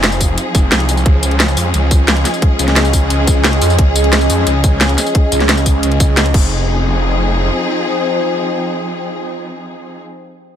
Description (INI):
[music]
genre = dark technical drum and bass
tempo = 176 BPM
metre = 4/4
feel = straight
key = F minor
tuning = A4 = 440 Hz
[part]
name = warm studio string section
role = sustained chords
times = 0.0-10.0 s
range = F3 to Ab4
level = -20 LUFS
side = left 1 dB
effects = sidechain pumping
[part]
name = snarling distorted saw bass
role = bass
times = 0.0-7.5 s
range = F1 to F2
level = -15 LUFS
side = equal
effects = distortion, overdrive, sidechain pumping
[part]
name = drum and bass drum kit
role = drums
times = 0.0-6.4 s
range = crash cymbal, hi-hat, snare drum, tambourine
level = -16 LUFS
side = equal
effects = overdrive
[part]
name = deep dark ambient pad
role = texture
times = 0.0-10.0 s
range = Db4 to G5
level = -20 LUFS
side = equal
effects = chorus, built-in reverb, sidechain pumping
[part]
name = electronic kick drum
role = drums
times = 0.2-6.4 s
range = none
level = -12 LUFS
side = equal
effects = overdrive
[sound]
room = light reverb, digital ambience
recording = none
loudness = -11 LUFS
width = side -9 dB against mid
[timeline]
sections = 0.0-6.5 A section; 6.5-9.2 B section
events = drop 0.0-6.5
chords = 0.0 Fm7; 1.1 Db; 6.3 Fm7